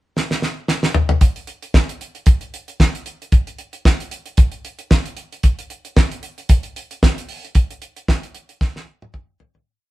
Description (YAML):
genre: disco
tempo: 114 BPM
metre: 4/4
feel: swing 56% on 16ths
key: none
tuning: none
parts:
  - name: damped 70s drum kit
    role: drums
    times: 0.2-9.7 s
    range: hi-hat, kick drum, snare drum, toms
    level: -15 LUFS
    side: equal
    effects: none
room: light reverb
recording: band playing live in one room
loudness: -17 LUFS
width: side -17 dB against mid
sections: 0.0-1.2 pickup bar; 1.2-9.7 breakdown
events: drum fill 0.2-1.2, 8.6-9.7; fade-out 7.6-9.7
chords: none